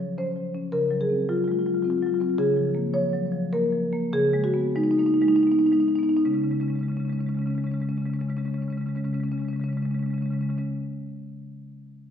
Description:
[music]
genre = classical, contemporary piece for solo marimba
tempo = 75-111 BPM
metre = 3/4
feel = rubato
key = Db major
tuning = A4 = 440 Hz
[part]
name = marimba with medium mallets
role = solo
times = 0.0-10.6 s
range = Db3 to Db5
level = -22 LUFS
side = left 1 dB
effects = none
[sound]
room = wet recital hall reverb, RT60 1.5 s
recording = heard from further back in the room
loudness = -22 LUFS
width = side -8 dB against mid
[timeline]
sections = 0.0-6.2 A section; 6.2-10.9 B section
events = slowing down 1.6-6.2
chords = 0.0 Db; 0.7 Gb5/Db; 2.4 Db6; 4.1 Cb69/Db; 6.2 Db5

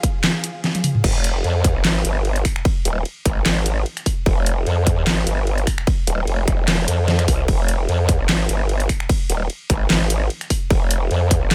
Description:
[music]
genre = heavy wobble dubstep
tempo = 149 BPM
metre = 4/4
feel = swing 54% on 16ths, half-time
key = F minor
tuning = A4 = 440 Hz
[part]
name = rich chamber string section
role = sustained chords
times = 0.0-1.0 s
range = F3 to F5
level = -38 LUFS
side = equal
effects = sidechain pumping, low-pass filter
[part]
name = dubstep drum kit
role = drums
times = 0.0-11.5 s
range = crash cymbal, finger snaps, handclaps, hi-hat, ride cymbal, snare drum, toms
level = -25 LUFS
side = equal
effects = overdrive
[part]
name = electronic kick drum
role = drums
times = 0.0-11.4 s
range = none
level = -22 LUFS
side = equal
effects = overdrive
[part]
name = growl bass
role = bass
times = 1.0-11.5 s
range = Eb1 to F2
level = -22 LUFS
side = equal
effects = chorus, overdrive
[sound]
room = little or no reverb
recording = none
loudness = -20 LUFS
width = mono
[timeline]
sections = 0.0-1.0 A section; 1.0-11.5 A section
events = drop 0.0-1.0, 1.0-11.5; kick drops out 0.6-1.0; drum fill 0.7-1.0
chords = 0.0 Fm

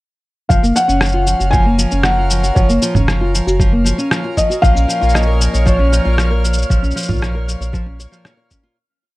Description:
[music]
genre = folktronica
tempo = 116 BPM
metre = 4/4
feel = straight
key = F# major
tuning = A4 = 440 Hz
[part]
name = felt-muted upright piano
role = melody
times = 0.5-8.2 s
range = C#5 to G#5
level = -19 LUFS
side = left 1 dB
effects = ping-pong delay
[part]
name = nylon-string guitar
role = arpeggios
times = 0.5-8.8 s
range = E#3 to C#5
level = -20 LUFS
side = equal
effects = vintage 12-bit sampler grit, low-pass filter
[part]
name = warm sub bass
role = bass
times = 0.5-8.1 s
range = F#1 to A#1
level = -16 LUFS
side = equal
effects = none
[part]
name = electronic kick drum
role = drums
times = 0.5-8.6 s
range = none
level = -15 LUFS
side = equal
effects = studio reverb
[part]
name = electronic shaker, rim click and congas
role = drums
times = 0.5-8.6 s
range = none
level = -20 LUFS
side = equal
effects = studio reverb
[part]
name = hand-pumped harmonium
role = sustained chords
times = 0.7-8.8 s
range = A#2 to E#5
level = -26 LUFS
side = left 1 dB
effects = none
[part]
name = flickering grainy texture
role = texture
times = 5.3-8.8 s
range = E#6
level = -30 LUFS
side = right 3 dB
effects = built-in reverb
[sound]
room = light reverb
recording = none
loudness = -12 LUFS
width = side -19 dB against mid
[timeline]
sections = 0.5-8.8 groove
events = fade-out 6.0-8.8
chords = 0.5 F#maj7; 4.6 A#m

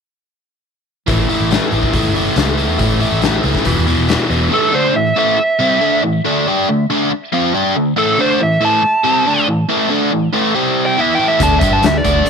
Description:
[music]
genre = blues rock power trio and southern rock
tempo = 139 BPM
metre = 4/4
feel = straight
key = unclear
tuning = A4 = 436 Hz
[part]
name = biting overdriven guitar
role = riff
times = 1.1-12.3 s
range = E2 to G4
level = -14 LUFS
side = equal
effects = none
[part]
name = vintage muted fingered electric bass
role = bass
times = 1.1-4.5, 11.4-12.3 s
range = E1 to A2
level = -18 LUFS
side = right 1 dB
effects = none
[part]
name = oversized low-tuned drum kit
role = drums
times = 1.1-4.4, 11.4-12.3 s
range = hi-hat, kick drum, snare drum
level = -18 LUFS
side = left 4 dB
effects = none
[part]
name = biting lead guitar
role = melody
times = 4.5-12.3 s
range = A4 to A5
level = -16 LUFS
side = right 2 dB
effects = overdrive, tape echo
[sound]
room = small room reverb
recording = 1960s-style stereo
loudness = -12 LUFS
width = side -6 dB against mid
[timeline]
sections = 1.1-4.5 A section; 4.5-12.3 B section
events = none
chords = 1.1 A; 3.7 E5; 4.5 Am7; 6.2 Dm; 8.0 Am; 10.5 C5; 11.0 A5; 11.4 D5

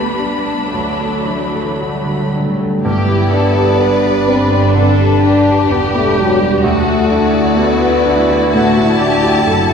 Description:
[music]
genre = classical, romantic movement for piano and orchestra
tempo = 55-65 BPM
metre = 4/4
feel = rubato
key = G major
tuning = A4 = 439 Hz
[part]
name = rich chamber violin section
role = melody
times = 0.0-9.7 s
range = B4 to B5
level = -23 LUFS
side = left 3 dB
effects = none
[part]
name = warm concert grand piano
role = melody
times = 0.0-9.7 s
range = D2 to B4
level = -17 LUFS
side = equal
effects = none
[part]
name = rich chamber violin section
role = second line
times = 0.0-9.7 s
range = D4 to B4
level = -20 LUFS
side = left 1 dB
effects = none
[part]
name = clear studio viola section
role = accompaniment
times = 0.0-9.7 s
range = F#3 to G4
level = -21 LUFS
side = right 1 dB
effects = none
[part]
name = warm studio cello section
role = bass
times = 0.0-9.7 s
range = D2 to A3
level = -22 LUFS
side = right 2 dB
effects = none
[part]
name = timpani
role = percussion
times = 0.7-2.8 s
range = D3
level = -24 LUFS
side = right 1 dB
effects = none
[part]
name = mellow French horn section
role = sustained chords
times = 1.3-9.0 s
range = F#3 to D4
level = -16 LUFS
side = left 2 dB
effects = none
[part]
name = rich chamber double bass section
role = bass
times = 2.8-9.7 s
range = E1 to D2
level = -21 LUFS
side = right 3 dB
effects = none
[sound]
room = wet concert hall reverb, RT60 2.0 s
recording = heard from further back in the room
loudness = -11 LUFS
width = side -6 dB against mid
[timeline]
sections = 0.0-2.8 A section; 2.8-9.7 A section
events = timpani fill 0.7-2.8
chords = 0.0 G/D; 0.7 D; 2.8 G; 6.6 D

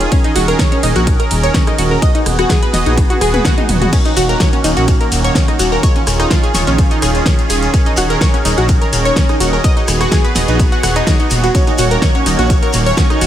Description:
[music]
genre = progressive house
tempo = 126 BPM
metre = 4/4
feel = straight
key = Eb minor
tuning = A4 = 440 Hz
[part]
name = filtered supersaw swell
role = sustained chords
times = 0.0-13.3 s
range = Eb3 to Bb4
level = -19 LUFS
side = right 2 dB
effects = sidechain pumping
[part]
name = dark detuned saw bass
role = bass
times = 0.0-13.3 s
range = Eb1 to Bb1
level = -17 LUFS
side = equal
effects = sidechain pumping
[part]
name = pop drum kit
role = drums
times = 0.0-13.3 s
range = crash cymbal, hi-hat, ride cymbal, rim click, snare drum, toms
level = -20 LUFS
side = equal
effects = sidechain pumping on hats, sidechain pumping on cymbals, sidechain pumping on toms
[part]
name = analog pluck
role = arpeggios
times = 0.1-13.2 s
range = Db4 to Gb6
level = -17 LUFS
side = equal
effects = chorus, sidechain pumping, ping-pong delay
[part]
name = electronic kick drum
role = drums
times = 0.1-13.1 s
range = none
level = -14 LUFS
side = equal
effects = none
[part]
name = shekere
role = percussion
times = 3.9-13.3 s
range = none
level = -25 LUFS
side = left 4 dB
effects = none
[part]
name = backwards swelling texture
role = texture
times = 5.2-13.3 s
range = Db5 to Db6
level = -26 LUFS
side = right 2 dB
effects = built-in reverb, sidechain pumping
[sound]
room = little or no reverb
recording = none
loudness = -11 LUFS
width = side -11 dB against mid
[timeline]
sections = 0.0-13.3 A section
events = drum fill 3.0-3.9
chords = 0.1 Gb6/Eb; 2.0 Abm7/Eb; 3.9 Ebm7; 5.8 Dbadd9/Eb; 7.7 Gb6/Eb; 9.6 Abm7/Eb; 11.5 Ebm7

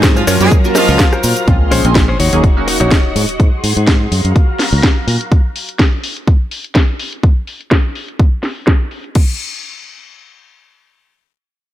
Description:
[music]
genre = filtered disco house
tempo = 125 BPM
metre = 4/4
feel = swing 54% on 16ths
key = unclear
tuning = A4 = 444 Hz
[part]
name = funky polysynth comp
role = accompaniment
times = 0.0-2.9 s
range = Gb3 to Db5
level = -18 LUFS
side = right 1 dB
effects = chorus, phaser, cassette tape, sidechain pumping, low-pass filter
[part]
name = string machine, full ensemble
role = sustained chords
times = 0.0-5.3 s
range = Gb3 to Db6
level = -21 LUFS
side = equal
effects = ensemble chorus, vintage 12-bit sampler grit, sidechain pumping, low-pass filter
[part]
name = fingered electric bass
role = bass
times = 0.0-5.2 s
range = Bb1 to Bb2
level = -15 LUFS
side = equal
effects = sidechain pumping, low-pass filter
[part]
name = electronic kick drum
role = drums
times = 0.0-9.3 s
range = none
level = -11 LUFS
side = equal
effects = overdrive
[part]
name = house drum kit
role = drums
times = 0.0-9.3 s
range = cabasa, crash cymbal, hi-hat, rim click, snare drum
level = -18 LUFS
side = left 1 dB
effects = overdrive, sidechain pumping on hats, low-pass filter on hats, sidechain pumping on perc, low-pass filter on perc, low-pass filter on snare, sidechain pumping on cymbals, low-pass filter on cymbals
[part]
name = brilliant horn section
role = melody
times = 0.2-1.1 s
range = F3 to Ab4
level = -19 LUFS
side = right 1 dB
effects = sidechain pumping, low-pass filter, tape echo
[part]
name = direct-recorded clean electric guitar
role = riff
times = 0.2-3.2 s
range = Db4 to F5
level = -19 LUFS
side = left 3 dB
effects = sidechain pumping, low-pass filter
[part]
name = sub drop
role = sound effects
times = 1.5-3.4 s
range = none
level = -20 LUFS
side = equal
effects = none
[sound]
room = light reverb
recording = none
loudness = -11 LUFS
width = side -13 dB against mid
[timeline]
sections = 0.0-1.5 A section; 1.5-9.2 B section; 9.2-11.7 C section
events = drop 0.0-1.5; clean electric guitar fill 0.5-1.5; impact 1.5-3.4; filter sweep on drum 1.5-9.2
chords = 0.3 Gbmaj7; 1.5 Bbm9; 2.2 Ebm7; 3.4 Ab7; 4.1 Gbmaj7; 5.3 N.C.

